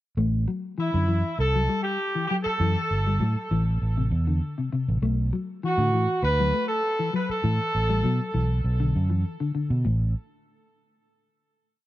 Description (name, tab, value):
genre	afrobeat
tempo	99 BPM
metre	4/4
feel	straight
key	A dorian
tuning	A4 = 440 Hz
part	mellow electric guitar	arpeggios	0.2-10.0 s	A2 to A3	-29 LUFS	left 4 dB	lush chorus
part	fingered electric bass	bass	0.2-10.1 s	G1 to B2	-23 LUFS	right 1 dB	none
part	warm horn section	melody	0.8-8.5 s	E4 to B4	-27 LUFS	right 1 dB	tape echo
room	small room ambience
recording	dry, close 1970s-style studio recording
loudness	-22 LUFS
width	side -15 dB against mid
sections	0.2-9.8 groove; 9.8-11.9 final chord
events	none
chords	0.2 Am7; 5.0 Bm7; 9.8 N.C.